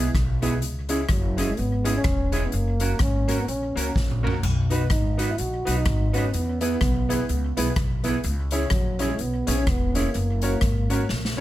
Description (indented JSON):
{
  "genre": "ska",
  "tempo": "126 BPM",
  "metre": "4/4",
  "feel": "swing 59% on 8ths",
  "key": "unclear",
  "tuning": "A4 = 440 Hz",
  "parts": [
    { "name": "dark trombone", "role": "melody", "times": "0.0-11.4 s", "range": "F#3 to F#4", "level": "-29 LUFS", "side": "right 1 dB", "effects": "tape echo" },
    { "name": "mellow electric guitar", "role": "accompaniment", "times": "0.0-11.4 s", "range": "B3 to B4", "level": "-29 LUFS", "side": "right 5 dB", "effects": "none" },
    { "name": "clear upright piano", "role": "stabs", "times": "0.0-11.4 s", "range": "G#3 to C#5", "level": "-32 LUFS", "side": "left 4 dB", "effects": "none" },
    { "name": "upright bass", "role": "bass", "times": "0.0-11.4 s", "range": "E1 to E2", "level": "-26 LUFS", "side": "equal", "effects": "none" },
    { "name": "street-band drum kit", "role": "drums", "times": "0.1-11.4 s", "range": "hi-hat, kick drum, rim click, snare drum, splash cymbal, toms", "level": "-26 LUFS", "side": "equal", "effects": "none" }
  ],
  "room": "studio ambience",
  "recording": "none",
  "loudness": "-21 LUFS",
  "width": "side -14 dB against mid",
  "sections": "0.0-11.4 A section",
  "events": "drum fill 4.0-4.4, 11.1-11.4",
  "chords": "0.0 E; 0.6 C#m; 2.5 F#; 4.4 B; 6.3 E; 8.2 C#m; 10.1 F#"
}